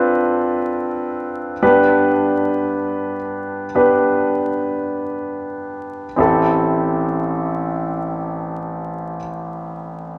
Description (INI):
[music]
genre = pop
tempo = free time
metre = none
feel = none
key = A minor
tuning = A4 = 440 Hz
[part]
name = clear concert grand piano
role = accompaniment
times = 0.0-10.2 s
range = A1 to B4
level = -20 LUFS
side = equal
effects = none
[sound]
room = wet large studio reverb, RT60 1.2 s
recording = vinyl crackle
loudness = -19 LUFS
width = mono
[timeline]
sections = 0.0-6.2 A section; 6.2-10.2 B section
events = slowing down 0.0-6.2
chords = 0.0 Dm7; 1.6 G; 6.2 Am7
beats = free time